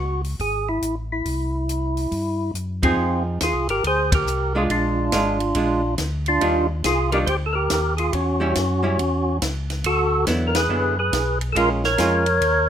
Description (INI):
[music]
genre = soul jazz organ trio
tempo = 140 BPM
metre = 4/4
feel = swing 65% on 8ths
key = unclear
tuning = A4 = 439 Hz
[part]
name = percussive tonewheel organ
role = melody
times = 0.0-12.7 s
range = C4 to Db5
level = -21 LUFS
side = right 1 dB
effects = slow rotary speaker, overdrive
[part]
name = mellow tonewheel organ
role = bass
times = 0.0-12.7 s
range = G#1 to G2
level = -25 LUFS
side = equal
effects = overdrive, chorus vibrato, slow rotary speaker
[part]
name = compact cocktail drum kit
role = drums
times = 0.2-12.5 s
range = hi-hat, kick drum, ride cymbal, snare drum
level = -26 LUFS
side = equal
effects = none
[part]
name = archtop guitar, miked and amplified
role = accompaniment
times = 2.8-12.2 s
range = D3 to G#4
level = -24 LUFS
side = right 2 dB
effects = none
[sound]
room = light reverb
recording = minimal, uncompressed stereo recording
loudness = -19 LUFS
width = side -9 dB against mid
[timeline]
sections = 0.0-3.0 A section; 3.0-12.7 B section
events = band accent 2.8, 4.0, 10.5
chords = 0.0 C#m; 1.3 C; 3.0 Fm7; 4.7 Bb7; 6.4 Ebmaj9; 8.1 Dbmadd11; 9.8 D69; 11.6 Bbm7